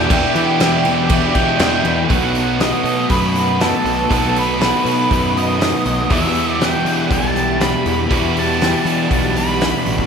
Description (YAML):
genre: rock, shoegaze and dream pop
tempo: 120 BPM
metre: 4/4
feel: straight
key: E minor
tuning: A4 = 440 Hz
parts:
  - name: octave-fuzz lead guitar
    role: melody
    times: 0.0-10.1 s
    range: G4 to B5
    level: -21 LUFS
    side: right 1 dB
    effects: distortion, diffuse ambient delay
  - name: string machine, cellos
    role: sustained chords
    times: 0.0-10.1 s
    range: G4 to E6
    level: -26 LUFS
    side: equal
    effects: ensemble chorus
  - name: electric guitar through a small old amp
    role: arpeggios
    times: 0.0-10.1 s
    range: E3 to G4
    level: -28 LUFS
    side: equal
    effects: none
  - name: biting overdriven guitar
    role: riff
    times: 0.0-10.1 s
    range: E2 to F#4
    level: -21 LUFS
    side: right 9 dB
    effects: reverse reverb
  - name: sludgy distorted guitar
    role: riff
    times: 0.0-10.1 s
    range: E2 to B3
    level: -25 LUFS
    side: equal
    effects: overdrive
  - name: thick fuzz guitar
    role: riff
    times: 0.0-10.1 s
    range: E2 to B3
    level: -22 LUFS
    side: left 8 dB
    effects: distortion, wide subtle chorus
  - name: fuzz picked electric bass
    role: bass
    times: 0.0-10.1 s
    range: A1 to E3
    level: -22 LUFS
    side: equal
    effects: overdrive
  - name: loose indie drum kit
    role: drums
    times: 0.1-10.1 s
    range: crash cymbal, hi-hat, kick drum, snare drum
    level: -21 LUFS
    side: equal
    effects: none
room: wet plate reverb, RT60 1.2 s, studio reverb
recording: dreamy mix soaked in reverb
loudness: -14 LUFS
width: side -6 dB against mid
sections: 0.0-2.1 A section; 2.1-10.1 B section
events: none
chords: 0.0 Em7; 2.1 B7; 6.1 Em7